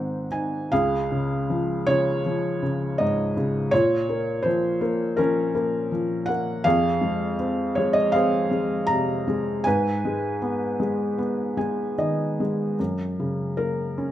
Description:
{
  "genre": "classical, lyrical solo piano",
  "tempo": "71-83 BPM",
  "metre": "4/4",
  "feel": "rubato",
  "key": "Db major",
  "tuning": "A4 = 435 Hz",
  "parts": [
    { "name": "felt-muted upright piano", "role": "solo", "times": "0.0-14.1 s", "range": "Db2 to Bb5", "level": "-22 LUFS", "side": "equal", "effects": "none" }
  ],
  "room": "light reverb",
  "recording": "close, detailed microphones",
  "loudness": "-22 LUFS",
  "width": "side -12 dB against mid",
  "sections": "0.7-12.8 A section; 12.8-14.1 B section",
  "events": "felt piano fill 11.2-12.8",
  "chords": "0.0 G#7; 0.7 Db; 3.7 Bbm; 6.7 Fm; 9.7 Abm; 12.8 F#"
}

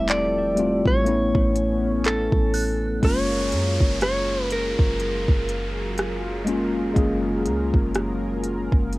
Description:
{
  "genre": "contemporary R&B",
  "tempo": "61 BPM",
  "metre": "4/4",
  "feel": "swing 58% on 16ths",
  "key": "F# major",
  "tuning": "A4 = 440 Hz",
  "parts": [
    { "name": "direct-recorded clean electric guitar", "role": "melody", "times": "0.0-5.9 s", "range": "A4 to D5", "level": "-25 LUFS", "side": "equal", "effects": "none" },
    { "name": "tine electric piano", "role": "accompaniment", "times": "0.0-9.0 s", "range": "G3 to G#4", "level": "-25 LUFS", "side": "left 2 dB", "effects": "medium stereo tremolo, cassette tape" },
    { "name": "chorused pulse-width pad", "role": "sustained chords", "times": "0.0-9.0 s", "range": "F3 to E5", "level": "-32 LUFS", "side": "equal", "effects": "cassette tape" },
    { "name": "clean 808-style bass", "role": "bass", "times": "0.0-9.0 s", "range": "E1 to F#2", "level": "-28 LUFS", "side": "equal", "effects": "none" },
    { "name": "smooth R&B drum kit", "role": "drums", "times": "0.1-9.0 s", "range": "handclaps, hi-hat, kick drum, rim click", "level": "-22 LUFS", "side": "equal", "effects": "none" },
    { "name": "synth chime", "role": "texture", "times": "2.5-3.5 s", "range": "F#6", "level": "-37 LUFS", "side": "right 4 dB", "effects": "ensemble chorus, tremolo, cassette tape" },
    { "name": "downlifter", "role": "sound effects", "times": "3.0-9.0 s", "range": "none", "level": "-33 LUFS", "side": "equal", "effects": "none" }
  ],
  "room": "little or no reverb",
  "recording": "home recording on cassette",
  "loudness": "-20 LUFS",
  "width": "side -20 dB against mid",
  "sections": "0.0-3.0 A section; 3.0-9.0 B section",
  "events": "none",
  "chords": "0.0 Fmaj9; 1.1 Aadd9; 3.0 F#maj9"
}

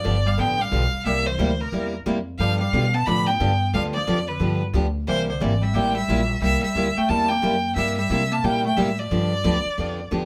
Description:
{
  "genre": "country, western swing",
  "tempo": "179 BPM",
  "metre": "4/4",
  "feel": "swing 62% on 8ths",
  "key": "unclear",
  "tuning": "A4 = 441 Hz",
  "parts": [
    { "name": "clear violin", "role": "melody", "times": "0.0-10.1 s", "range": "Bb4 to B5", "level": "-27 LUFS", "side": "equal", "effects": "none" },
    { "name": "vintage hollow-body jazz guitar", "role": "second line", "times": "0.0-10.1 s", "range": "C3 to D4", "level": "-31 LUFS", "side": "equal", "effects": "none" },
    { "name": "picked steel-string acoustic guitar", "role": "accompaniment", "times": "0.0-10.2 s", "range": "C3 to G4", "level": "-27 LUFS", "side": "equal", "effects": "none" },
    { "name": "upright bass", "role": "bass", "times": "0.0-10.3 s", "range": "G1 to C3", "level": "-28 LUFS", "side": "equal", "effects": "none" }
  ],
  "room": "moderate small room reverb, RT60 0.5 s",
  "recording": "band playing live in one room",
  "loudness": "-22 LUFS",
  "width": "mono",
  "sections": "0.0-10.3 A section",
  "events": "none",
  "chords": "0.0 G7; 1.1 C7; 2.4 G7; 5.1 C7; 9.1 G7"
}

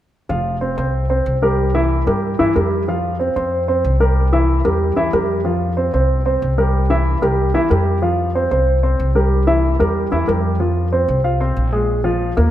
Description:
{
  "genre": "Afro-Cuban jazz",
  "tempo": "186 BPM",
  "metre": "4/4",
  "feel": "straight",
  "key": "unclear",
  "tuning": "A4 = 440 Hz",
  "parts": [
    { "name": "warm upright piano", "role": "accompaniment", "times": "0.3-12.5 s", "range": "E3 to F5", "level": "-17 LUFS", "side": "equal", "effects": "none" },
    { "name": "upright bass", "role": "bass", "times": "0.3-12.5 s", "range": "F1 to G2", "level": "-18 LUFS", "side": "equal", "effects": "none" }
  ],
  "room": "moderate concert hall reverb, RT60 1.9 s",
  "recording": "none",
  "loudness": "-15 LUFS",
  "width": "side -12 dB against mid",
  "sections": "0.3-10.6 A section; 10.6-12.5 B section",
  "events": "none",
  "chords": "0.3 Fsus2; 1.6 C7; 2.9 Fsus2; 4.2 C7; 5.5 Fsus2; 6.7 C7; 8.0 Fsus2; 9.3 C7; 10.6 F5; 11.9 Bb5"
}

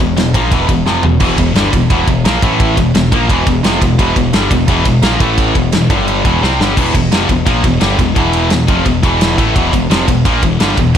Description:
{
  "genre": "heavy metal",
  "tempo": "173 BPM",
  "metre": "4/4",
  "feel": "straight",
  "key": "E minor",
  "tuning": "A4 = 440 Hz",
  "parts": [
    { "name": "high-gain distorted guitar", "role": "riff", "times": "0.0-10.9 s", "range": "E2 to C4", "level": "-16 LUFS", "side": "left 10 dB", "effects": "distortion" },
    { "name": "tight distorted guitar", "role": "riff", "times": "0.0-11.0 s", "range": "E2 to C4", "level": "-18 LUFS", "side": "right 10 dB", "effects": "distortion" },
    { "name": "growling picked electric bass", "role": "bass", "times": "0.0-11.0 s", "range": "E1 to C2", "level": "-18 LUFS", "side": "equal", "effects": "overdrive" },
    { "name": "big rock drum kit", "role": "drums", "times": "0.2-11.0 s", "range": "crash cymbal, kick drum, ride cymbal, snare drum, toms", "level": "-14 LUFS", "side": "right 1 dB", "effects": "none" },
    { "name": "high-gain distorted guitar", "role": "riff", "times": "1.2-11.0 s", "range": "E2 to C4", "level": "-18 LUFS", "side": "right 1 dB", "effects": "distortion" }
  ],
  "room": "light reverb",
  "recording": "dark, warm production",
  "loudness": "-10 LUFS",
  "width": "side -9 dB against mid",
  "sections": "0.0-6.8 A section; 6.8-11.0 B section",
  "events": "drum fill 0.9-1.2, 6.4-6.8",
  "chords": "0.0 Em; 2.4 A5; 2.8 Em; 5.2 A5; 5.6 E5; 5.9 G5; 6.3 Em"
}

